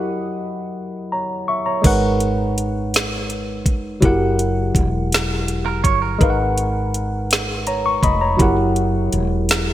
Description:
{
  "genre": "slow six-eight R&B",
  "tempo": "55 BPM (dotted quarters)",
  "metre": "6/8",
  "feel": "straight",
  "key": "G# minor",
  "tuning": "A4 = 440 Hz",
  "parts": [
    { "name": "tine electric piano", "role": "accompaniment", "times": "0.0-9.7 s", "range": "F#3 to C#6", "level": "-20 LUFS", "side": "left 1 dB", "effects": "phaser" },
    { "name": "woody fretless electric bass", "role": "bass", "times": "1.8-9.7 s", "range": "E1 to G#1", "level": "-22 LUFS", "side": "equal", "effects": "wide subtle chorus" },
    { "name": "smooth R&B drum kit", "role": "drums", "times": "1.8-9.7 s", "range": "crash cymbal, hi-hat, kick drum, snare drum", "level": "-18 LUFS", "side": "equal", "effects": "gated reverb" },
    { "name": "clean electric guitar", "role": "second line", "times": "5.7-6.4 s", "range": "A#4 to C#5", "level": "-23 LUFS", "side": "right 10 dB", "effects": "none" }
  ],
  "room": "light reverb, digital ambience",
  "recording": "bright 1980s-style digital production",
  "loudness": "-17 LUFS",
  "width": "side -13 dB against mid",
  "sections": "0.0-1.8 A section; 1.8-9.7 B section",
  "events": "break 0.0-1.8",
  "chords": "0.0 F#7b9; 1.8 G#m9; 4.0 F#7b9; 6.2 G#m9; 8.4 F#7b9",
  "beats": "0.75 | 1.84 2.93 | 4.02 5.12 | 6.21 7.30 | 8.39 9.48"
}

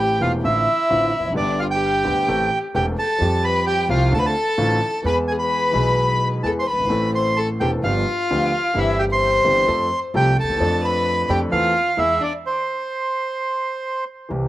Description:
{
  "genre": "tango",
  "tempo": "130 BPM",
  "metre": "4/4",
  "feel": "rubato",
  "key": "A minor",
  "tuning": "A4 = 441 Hz",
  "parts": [
    { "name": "bandoneon", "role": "melody", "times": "0.0-14.0 s", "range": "C5 to C6", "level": "-21 LUFS", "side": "right 2 dB", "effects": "slapback echo" },
    { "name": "warm violin", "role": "second line", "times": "0.0-12.3 s", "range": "D4 to C5", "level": "-23 LUFS", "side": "left 3 dB", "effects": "none" },
    { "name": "warm concert grand piano", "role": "accompaniment", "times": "0.0-14.5 s", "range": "E1 to A4", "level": "-24 LUFS", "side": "equal", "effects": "slapback echo" },
    { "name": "upright bass", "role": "bass", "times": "0.0-14.5 s", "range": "E1 to F2", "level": "-24 LUFS", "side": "right 1 dB", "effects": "none" }
  ],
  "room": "little or no reverb",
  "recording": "recorded outdoors, with no room sound",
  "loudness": "-17 LUFS",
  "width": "side -15 dB against mid",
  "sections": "0.0-14.3 A section",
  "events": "stop 12.4-14.3",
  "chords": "0.4 Dm7/A; 1.4 G; 2.3 Am; 3.2 Fsus2; 4.1 Dm7; 5.0 E; 6.9 Am; 7.8 G7; 8.8 C/G; 9.7 F; 10.6 Dm/F; 11.5 Am/E; 12.0 E; 12.4 N.C.",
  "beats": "0.45 0.91 | 1.37 1.83 2.29 2.75 | 3.21 3.67 4.12 4.59 | 5.05 5.51 5.97 6.44 | 6.91 7.38 7.84 8.30 | 8.77 9.23 9.69 10.15 | 10.61 11.07 11.53 11.98 | 12.44 12.90 13.37 13.84 | 14.31"
}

